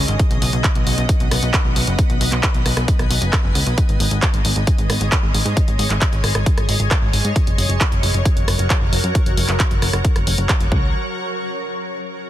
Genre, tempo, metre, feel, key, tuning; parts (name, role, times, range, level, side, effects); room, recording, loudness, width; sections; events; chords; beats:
uplifting trance; 134 BPM; 4/4; straight; A4 = 440 Hz
shimmering ambient pad; sustained chords; 0.0-10.9 s; Db3 to Ab5; -25 LUFS; equal; chorus, built-in reverb, vintage 12-bit sampler grit, sidechain pumping
plucky analog bass; bass; 0.0-10.9 s; Gb1 to Ab2; -20 LUFS; equal; sidechain pumping
punchy analog drum machine; drums; 0.1-10.7 s; handclaps, hi-hat, rim click; -22 LUFS; equal; sidechain pumping on hats, soft clipping on snare, sidechain pumping on cymbals
electronic kick drum; drums; 0.2-10.8 s; -18 LUFS; equal; overdrive
little or no reverb; dense, heavily limited modern master; -15 LUFS; side -13 dB against mid
0.0-10.9 A section; 10.9-12.3 B section
filter sweep on analog synth bass 0.0-10.9
0.2 Cb; 3.8 Absus4; 7.4 Gb; 10.7 Db; 10.9 N.C.
| 0.20 0.64 1.09 1.54 | 1.99 2.43 2.88 3.33 | 3.78 4.22 4.67 5.12 | 5.57 6.02 6.46 6.91 | 7.36 7.81 8.25 8.70 | 9.15 9.60 10.04 10.49